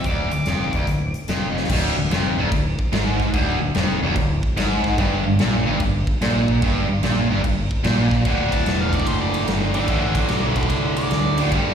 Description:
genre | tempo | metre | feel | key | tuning
blues rock power trio and southern rock | 147 BPM | 4/4 | swing 66% on 8ths | unclear | A4 = 440 Hz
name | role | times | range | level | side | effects
octave-fuzz lead guitar | melody | 0.0-1.1, 8.5-11.4 s | A4 to D6 | -29 LUFS | right 1 dB | distortion, slapback echo
distorted electric guitar | riff | 0.0-11.7 s | D2 to G3 | -21 LUFS | equal | overdrive, slapback echo
growling fingered electric bass | bass | 0.0-11.7 s | D1 to G2 | -24 LUFS | equal | overdrive
big rock drum kit | drums | 0.0-11.6 s | crash cymbal, hi-hat, kick drum, ride cymbal, snare drum | -24 LUFS | equal | none
room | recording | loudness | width
light reverb | live gig heard through the venue's PA, recital hall reverb | -18 LUFS | side -8 dB against mid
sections
0.0-1.7 A section; 1.7-8.3 B section; 8.3-11.7 C section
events
drum fill 1.5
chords
0.0 Ddim; 5.0 Gm; 8.3 D

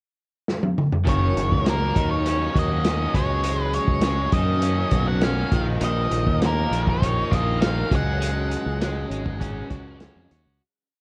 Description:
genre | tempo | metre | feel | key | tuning
indie rock | 101 BPM | 4/4 | straight | unclear | A4 = 440 Hz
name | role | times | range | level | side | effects
vintage drum kit | drums | 0.5-10.4 s | hi-hat, kick drum, snare drum, toms | -27 LUFS | equal | none
biting overdriven guitar | riff | 1.0-10.3 s | F#2 to D#4 | -30 LUFS | equal | ensemble chorus
octave-fuzz lead guitar | melody | 1.1-10.0 s | A#4 to F#5 | -30 LUFS | equal | distortion, tape echo
crunchy overdriven guitar | riff | 1.1-10.6 s | D#3 to F#4 | -35 LUFS | equal | none
fingered electric bass | bass | 1.1-10.6 s | F#1 to F#2 | -28 LUFS | equal | none
room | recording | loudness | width
light reverb | worn, warbling old tape, cassette tape, warbly pitch drift | -22 LUFS | mono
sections
0.0-1.1 pickup bar; 1.1-10.6 verse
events
drum fill 0.5-1.1; fade-out 8.2-10.6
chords
0.0 N.C.; 1.1 F#6; 2.0 D#m7; 3.2 C#sus4; 4.3 F#6; 5.5 A#sus4; 7.9 C#sus4

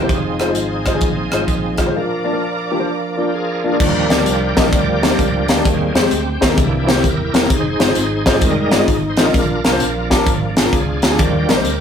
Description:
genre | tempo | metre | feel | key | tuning
uptempo gospel | 130 BPM | 4/4 | swing 66% on 8ths | Eb major | A4 = 440 Hz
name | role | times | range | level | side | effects
dark baby grand piano | accompaniment | 0.0-11.8 s | Bb2 to F5 | -19 LUFS | left 3 dB | none
bright tonewheel organ | sustained chords | 0.0-11.8 s | E3 to D5 | -20 LUFS | right 1 dB | slow rotary speaker, overdrive, chorus vibrato
warm studio string section | sustained chords | 0.0-3.8 s | D5 to D6 | -30 LUFS | right 2 dB | none
fingered electric bass | bass | 0.1-11.8 s | Eb1 to F2 | -24 LUFS | right 1 dB | none
crisp fusion drum kit | drums | 0.1-11.8 s | crash cymbal, hi-hat, kick drum, rim click, snare drum | -17 LUFS | equal | none
room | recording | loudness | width
light reverb | rough rehearsal-room recording | -14 LUFS | side -8 dB against mid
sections
0.0-3.8 A section; 3.8-11.8 B section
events
tonewheel organ solo 3.8-11.8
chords
0.1 Fm7; 1.9 Bb; 3.8 Ebmaj7; 5.6 Abmaj7/Eb; 6.6 C7; 7.5 Fm7; 9.3 Bb; 11.2 Ebmaj7

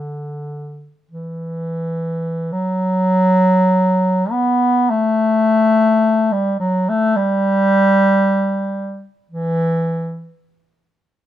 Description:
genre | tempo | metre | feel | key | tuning
classical, free, expressive piece for unaccompanied bass clarinet | free time | none | none | unclear | A4 = 441 Hz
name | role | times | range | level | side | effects
mellow bass clarinet | solo | 0.0-10.3 s | D3 to B3 | -15 LUFS | equal | none
room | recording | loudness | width
little or no reverb | close, detailed microphones | -14 LUFS | side -12 dB against mid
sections
0.0-2.5 A section; 2.5-11.3 A section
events
none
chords
none

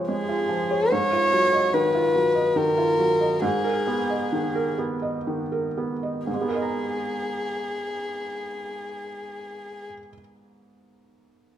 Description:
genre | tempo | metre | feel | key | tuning
neoclassical piano and strings | 59-75 BPM | 3/4 | rubato | G# dorian | A4 = 435 Hz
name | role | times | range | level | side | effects
felt-muted upright piano | accompaniment | 0.0-11.6 s | G#2 to A#5 | -26 LUFS | right 2 dB | none
warm violin | melody | 0.1-9.9 s | G#4 to C#5 | -24 LUFS | left 1 dB | none
room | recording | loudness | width
moderate recital hall reverb, RT60 1.7 s | minimal, uncompressed stereo recording | -22 LUFS | side -10 dB against mid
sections
0.0-6.3 A section; 6.3-9.3 B section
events
slowing down 0.0-6.3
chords
0.0 A#m7/G# (rootless); 0.9 D#madd9/G#; 3.4 G#madd9

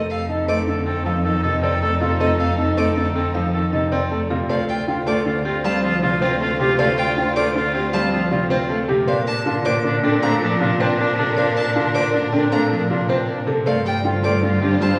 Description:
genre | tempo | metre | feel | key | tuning
classical, minimalist pattern music | 157 BPM | 6/4 | straight | F mixolydian | A4 = 440 Hz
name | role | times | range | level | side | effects
buzzing marimba with medium hard mallets | melody | 0.0-15.0 s | G4 to A5 | -29 LUFS | equal | none
clear oboe | second line | 0.0-14.9 s | D4 to A4 | -28 LUFS | equal | none
bright concert grand piano | accompaniment | 0.0-15.0 s | C3 to C4 | -25 LUFS | equal | none
warm symphonic string section | sustained chords | 0.0-15.0 s | D4 to C5 | -31 LUFS | equal | none
rich violin | arpeggios | 0.0-15.0 s | Eb5 to D6 | -32 LUFS | equal | none
warm baby grand piano | arpeggios | 0.0-15.0 s | C4 to C5 | -28 LUFS | equal | none
rich cello | bass | 0.0-15.0 s | D2 to Bb2 | -27 LUFS | equal | none
room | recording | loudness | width
wet recital hall reverb, RT60 1.9 s | recorded in a church or concert hall, small room reverb | -20 LUFS | mono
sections
0.0-15.0 A section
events
none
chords
0.0 F7; 4.5 Dm7; 9.1 Bbmaj7; 13.7 G7sus4

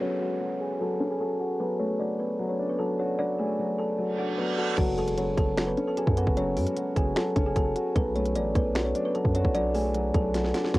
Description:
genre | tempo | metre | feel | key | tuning
hip hop, trap | 151 BPM | 4/4 | half-time | F# minor | A4 = 439 Hz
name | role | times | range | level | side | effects
kalimba | melody | 0.0-10.8 s | B3 to A5 | -28 LUFS | equal | low-pass filter, cassette tape
dark grand piano | accompaniment | 0.0-10.8 s | F#3 to F#4 | -31 LUFS | left 2 dB | low-pass filter
downlifter, reverse cymbal and impact | sound effects | 0.0-1.6, 4.1-6.4 s | none | -37 LUFS | right 4 dB | none
long sustained 808-style bass | bass | 4.8-10.8 s | F#1 to F#2 | -30 LUFS | equal | none
trap drum kit | drums | 4.8-10.8 s | crash cymbal, finger snaps, hi-hat, kick drum, snare drum | -27 LUFS | equal | overdrive, cassette tape
room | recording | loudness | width
little or no reverb | home recording on cassette | -24 LUFS | side -18 dB against mid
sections
0.0-4.8 A section; 4.8-10.8 B section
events
filter sweep 0.0-4.8; reverse cymbal 4.1-4.8; impact 4.8-6.4; drum fill 10.3-10.8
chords
0.0 F#madd9; 1.6 Bm7; 4.8 F#madd9; 8.0 Bm7

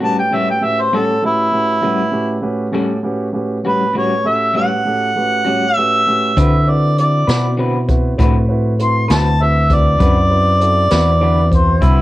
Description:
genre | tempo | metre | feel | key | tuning
slow blues | 66 BPM (dotted quarters) | 12/8 | straight | A mixolydian | A4 = 440 Hz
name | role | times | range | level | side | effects
mellow harmonica | melody | 0.0-12.0 s | E4 to C6 | -16 LUFS | equal | overdrive, cassette tape
dark concert grand piano | accompaniment | 0.0-12.0 s | A2 to D5 | -21 LUFS | right 2 dB | cassette tape
electric guitar through a small old amp | accompaniment | 0.0-12.0 s | A2 to B4 | -22 LUFS | left 3 dB | tremolo, cassette tape
fingered electric bass | bass | 6.4-12.0 s | C2 to D3 | -15 LUFS | equal | none
jazz brush drum kit | drums | 6.4-12.0 s | hi-hat, kick drum, snare drum | -16 LUFS | equal | cassette tape
room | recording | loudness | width
light reverb, studio reverb | home recording on cassette | -12 LUFS | side -16 dB against mid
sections
0.0-12.0 A section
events
none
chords
0.0 A13; 6.4 D13

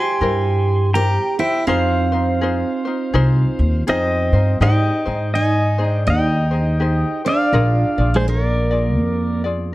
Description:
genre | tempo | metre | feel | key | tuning
Hawaiian | 82 BPM | 4/4 | swing 62% on 8ths | F minor, Ab major from 4.6 s | A4 = 441 Hz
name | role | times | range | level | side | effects
pedal steel guitar | melody | 0.0-9.4 s | Ab4 to C6 | -21 LUFS | equal | none
picked steel-string acoustic guitar | second line | 0.0-9.4 s | Ab3 to G4 | -23 LUFS | right 4 dB | tape echo
ukulele | accompaniment | 0.0-9.7 s | Eb4 to D5 | -26 LUFS | left 4 dB | none
upright bass | bass | 0.2-9.7 s | Bb1 to Ab2 | -18 LUFS | equal | none
room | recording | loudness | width
light reverb | dark, warm production | -15 LUFS | side -17 dB against mid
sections
0.0-4.6 A section; 4.6-9.7 B section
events
none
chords
0.0 C7; 1.7 Fm7; 4.6 Abmaj7; 7.5 Bb7

